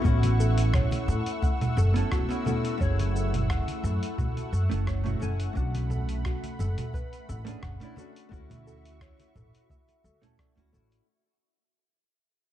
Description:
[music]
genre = sunset chillout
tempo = 87 BPM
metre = 4/4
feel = swing 54% on 16ths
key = unclear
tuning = A4 = 440 Hz
[part]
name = vintage hollow-body jazz guitar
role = accompaniment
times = 0.0-11.0 s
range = A3 to G#5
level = -34 LUFS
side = moving between left 4 dB and right 8 dB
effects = auto-pan, ping-pong delay
[part]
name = lush unison pad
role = sustained chords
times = 0.0-11.0 s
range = A3 to E6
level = -37 LUFS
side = left 1 dB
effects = chorus
[part]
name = soft round pluck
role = arpeggios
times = 0.0-11.1 s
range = F#4 to F#5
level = -39 LUFS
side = left 3 dB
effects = chorus, cassette tape, ping-pong delay
[part]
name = upright bass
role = bass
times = 0.0-11.0 s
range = E1 to A2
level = -26 LUFS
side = equal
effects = none
[part]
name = electronic kick drum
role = drums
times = 0.0-10.5 s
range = none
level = -30 LUFS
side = equal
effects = overdrive
[part]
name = dusty soul sampler-style drum kit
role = drums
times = 0.1-11.1 s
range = congas, hi-hat, rim click, shaker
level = -34 LUFS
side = right 2 dB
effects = none
[part]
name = congas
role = percussion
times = 0.2-10.9 s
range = none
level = -37 LUFS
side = left 2 dB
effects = none
[sound]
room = little or no reverb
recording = dark, warm production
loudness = -25 LUFS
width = side -12 dB against mid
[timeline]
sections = 0.0-11.1 A section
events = fade-out 0.0-11.1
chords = 0.0 A6; 2.8 F#m7; 5.6 Bm7; 8.3 Dmaj9

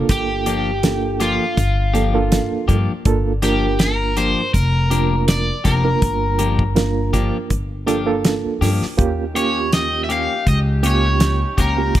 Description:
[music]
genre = straight-eighth soul blues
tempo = 81 BPM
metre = 4/4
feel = swing 53% on 16ths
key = G minor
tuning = A4 = 439 Hz
[part]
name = barky reed electric piano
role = accompaniment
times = 0.0-11.9 s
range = Bb3 to Bb4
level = -22 LUFS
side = right 6 dB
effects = overdrive, fast tremolo
[part]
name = upright bass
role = bass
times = 0.0-12.0 s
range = F1 to G2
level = -20 LUFS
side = equal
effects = none
[part]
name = overdriven semi-hollow guitar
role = melody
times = 0.1-12.0 s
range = F4 to F5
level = -22 LUFS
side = left 1 dB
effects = slapback echo
[part]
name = damped 70s drum kit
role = drums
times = 0.1-12.0 s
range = hi-hat, kick drum, snare drum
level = -20 LUFS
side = equal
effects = none
[part]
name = clean electric guitar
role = stabs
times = 0.5-11.8 s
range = F3 to G4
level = -25 LUFS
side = left 4 dB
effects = slapback echo
[part]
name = clear horn section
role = sustained chords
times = 9.0-12.0 s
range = C4 to G4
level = -33 LUFS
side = equal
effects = none
[sound]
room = small room reverb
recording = none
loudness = -16 LUFS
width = side -13 dB against mid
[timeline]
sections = 0.0-12.0 A section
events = none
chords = 0.0 Gm7; 9.0 Eb7

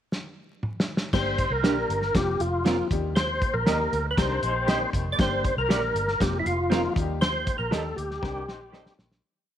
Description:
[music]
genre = uptempo 1960s-style soul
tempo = 118 BPM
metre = 4/4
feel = straight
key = G minor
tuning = A4 = 440 Hz
[part]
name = warm soul drum kit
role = drums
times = 0.1-9.2 s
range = crash cymbal, hi-hat, kick drum, snare drum, toms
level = -27 LUFS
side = equal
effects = none
[part]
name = percussive tonewheel organ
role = melody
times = 1.1-8.9 s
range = E4 to D5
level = -27 LUFS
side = equal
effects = chorus vibrato, slow rotary speaker
[part]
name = warm upright piano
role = accompaniment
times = 1.1-9.0 s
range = F3 to Bb4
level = -34 LUFS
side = left 7 dB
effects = none
[part]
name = vintage muted fingered electric bass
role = bass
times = 1.1-9.2 s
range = F1 to Eb2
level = -31 LUFS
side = equal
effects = none
[part]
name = electric guitar through a small old amp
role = stabs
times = 1.6-8.8 s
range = C4 to Eb5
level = -31 LUFS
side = right 7 dB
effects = none
[part]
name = electric guitar through a small old amp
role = riff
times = 4.2-5.2, 8.2-9.2 s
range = Bb3 to C5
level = -35 LUFS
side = left 8 dB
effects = tremolo
[sound]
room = light reverb, small room ambience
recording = 1960s-style stereo with parts hard left and right, vinyl crackle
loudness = -23 LUFS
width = side -10 dB against mid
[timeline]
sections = 0.0-1.1 pickup bar; 1.1-9.2 verse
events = drum fill 0.1-1.1, 8.2-9.2; fade-out 7.2-9.2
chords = 0.0 N.C.; 1.1 Gm; 2.1 Fsus4; 2.9 Eb; 4.2 Cm; 5.2 Gm; 6.2 Fsus4; 7.0 Eb; 8.2 Cm

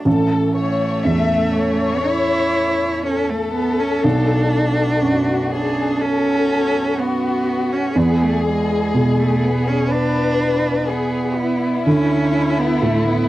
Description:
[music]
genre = neoclassical piano and strings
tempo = 61 BPM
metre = 4/4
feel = rubato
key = A major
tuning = A4 = 443 Hz
[part]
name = rich cello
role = second line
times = 0.0-13.3 s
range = G#3 to E4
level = -21 LUFS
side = right 2 dB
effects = none
[part]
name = felt-muted upright piano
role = accompaniment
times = 0.0-13.3 s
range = A1 to B2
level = -20 LUFS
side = right 1 dB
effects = none
[part]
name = dark symphonic violin section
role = melody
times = 0.1-13.3 s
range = E4 to E5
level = -22 LUFS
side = left 4 dB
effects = cassette tape
[part]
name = hand-pumped harmonium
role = sustained chords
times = 0.1-13.3 s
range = A3 to E5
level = -31 LUFS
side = left 1 dB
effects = stereo widening
[sound]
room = light reverb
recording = home recording on cassette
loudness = -16 LUFS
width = side -15 dB against mid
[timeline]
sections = 0.1-13.3 A section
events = none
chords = 0.1 A; 4.0 Bm7; 8.0 E7; 11.9 Dsus2

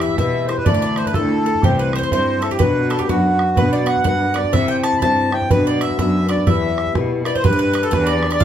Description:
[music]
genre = celtic folk, Celtic polka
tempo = 124 BPM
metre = 2/4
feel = swing 63% on 8ths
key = E minor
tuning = A4 = 440 Hz
[part]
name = accordion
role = melody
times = 0.0-8.4 s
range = F#4 to B5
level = -21 LUFS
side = right 1 dB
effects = none
[part]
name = bowl-back mandolin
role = second line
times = 0.0-8.4 s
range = F#4 to A5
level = -26 LUFS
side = right 5 dB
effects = none
[part]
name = fingerpicked acoustic archtop guitar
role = accompaniment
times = 0.0-8.4 s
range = B2 to C5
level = -20 LUFS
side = left 3 dB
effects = none
[part]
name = dark cello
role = bass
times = 0.0-8.4 s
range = C2 to C3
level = -23 LUFS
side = right 1 dB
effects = none
[part]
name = bodhran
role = percussion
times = 0.0-8.4 s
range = none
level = -21 LUFS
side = right 2 dB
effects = none
[sound]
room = wet large studio reverb, RT60 1.0 s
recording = band playing live in one room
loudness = -15 LUFS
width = side -10 dB against mid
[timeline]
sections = 0.0-7.4 A section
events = none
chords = 0.0 Em; 0.7 Dsus2; 1.6 C; 2.6 Bm; 4.5 C; 5.5 Bm; 6.5 Em; 7.4 G

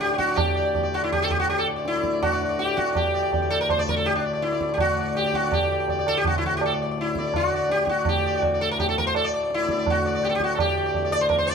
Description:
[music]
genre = indian classical, Hindustani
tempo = 165 BPM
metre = 7/4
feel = straight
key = D major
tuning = A4 = 440 Hz
[part]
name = sitar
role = melody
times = 0.0-11.5 s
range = D4 to D5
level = -22 LUFS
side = left 1 dB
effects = none
[part]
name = hand-pumped harmonium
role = drone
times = 0.0-11.5 s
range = D2 to A2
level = -31 LUFS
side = left 2 dB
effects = none
[part]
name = tabla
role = percussion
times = 0.0-11.5 s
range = none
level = -28 LUFS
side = right 5 dB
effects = none
[sound]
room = light reverb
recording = close, detailed microphones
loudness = -21 LUFS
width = side -6 dB against mid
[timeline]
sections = 0.0-11.5 A section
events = speeding up 0.0-11.5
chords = none

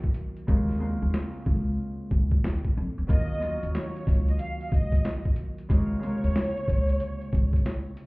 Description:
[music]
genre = hip hop, boom-bap hip-hop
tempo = 92 BPM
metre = 4/4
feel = swing 63% on 16ths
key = unclear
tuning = A4 = 441 Hz
[part]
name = Celtic harp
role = accompaniment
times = 0.0-8.1 s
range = C3 to F4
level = -32 LUFS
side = equal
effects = cassette tape, high-pass filter, low-pass filter
[part]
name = boom bap sampler-style drum kit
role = drums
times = 0.0-8.1 s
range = handclaps, hi-hat, kick drum, snare drum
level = -25 LUFS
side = equal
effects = none
[part]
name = upright bass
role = bass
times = 0.5-7.6 s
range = Db2 to F2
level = -28 LUFS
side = equal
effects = none
[part]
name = warm symphonic violin section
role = melody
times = 3.1-7.8 s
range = Db5 to F5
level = -34 LUFS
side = equal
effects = high-pass filter, low-pass filter, slapback echo
[sound]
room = studio ambience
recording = heard muffled through a wall, club reverb, EQ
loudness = -24 LUFS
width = side -26 dB against mid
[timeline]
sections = 0.0-8.1 A section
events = hi-hats muted 0.5-3.1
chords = 0.5 Bbm9; 3.1 Ebm9; 5.7 Bbm9

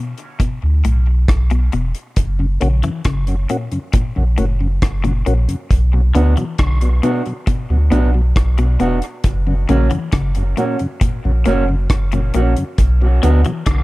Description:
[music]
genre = dub reggae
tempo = 68 BPM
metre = 4/4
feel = straight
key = B harmonic minor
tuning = A4 = 438 Hz
[part]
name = mellow tonewheel organ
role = accompaniment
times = 0.0-13.5 s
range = F#2 to F#4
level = -24 LUFS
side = left 1 dB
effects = slow rotary speaker, high-pass filter, dub echo
[part]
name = semi-hollow electric guitar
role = arpeggios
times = 0.0-13.8 s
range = A2 to E3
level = -24 LUFS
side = left 4 dB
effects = dub echo
[part]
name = deep reggae drum kit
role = drums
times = 0.2-13.8 s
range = hi-hat, kick drum, rim click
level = -17 LUFS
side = equal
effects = none
[part]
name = warm sub bass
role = bass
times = 0.6-13.8 s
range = E1 to D2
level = -15 LUFS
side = equal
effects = none
[part]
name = mellow electric guitar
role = accompaniment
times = 6.2-13.4 s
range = A#3 to F#4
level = -21 LUFS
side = right 2 dB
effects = high-pass filter, dub echo
[sound]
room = small room reverb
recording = none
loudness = -14 LUFS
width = side -19 dB against mid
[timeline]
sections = 0.0-13.8 A section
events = break 0.0-5.7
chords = 0.0 Bm; 2.2 F#; 5.7 Bm; 9.2 F#; 12.8 Bm

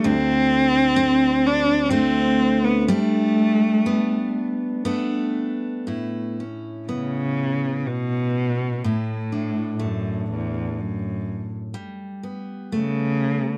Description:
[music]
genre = celtic folk, Celtic slow air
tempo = 59-66 BPM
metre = 3/4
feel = rubato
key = A mixolydian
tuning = A4 = 441 Hz
[part]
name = rich cello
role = melody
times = 0.0-13.6 s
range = E2 to D4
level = -24 LUFS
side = equal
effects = none
[part]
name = picked steel-string acoustic guitar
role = accompaniment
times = 0.0-13.6 s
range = D2 to E4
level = -26 LUFS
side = equal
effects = none
[sound]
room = light reverb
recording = dry, close 1970s-style studio recording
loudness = -22 LUFS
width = mono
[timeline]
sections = 0.0-5.9 A section; 5.9-13.6 B section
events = none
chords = 0.0 D5; 2.9 Gadd9; 5.9 Aadd9; 8.8 Dsus2; 11.8 Gadd9

